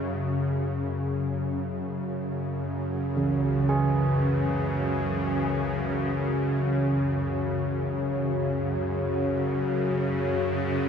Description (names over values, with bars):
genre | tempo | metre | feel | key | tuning
dark ambient drone | free time | none | none | unclear | A4 = 440 Hz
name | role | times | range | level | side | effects
deep dark ambient pad | sustained chords | 0.2-10.9 s | F#4 to G#5 | -33 LUFS | left 1 dB | chorus, built-in reverb
bowed-like drone | drone | 0.0-10.9 s | F#2 to C#3 | -26 LUFS | equal | built-in reverb
carillon bells | arpeggios | 3.2-10.1 s | C#3 to G#4 | -32 LUFS | right 2 dB | ping-pong delay
room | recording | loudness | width
wet huge ambient reverb, RT60 7.8 s | none | -24 LUFS | side -7 dB against mid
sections
0.0-10.9 A section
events
fade-in on ambient pad 0.0-10.9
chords
0.0 F#sus2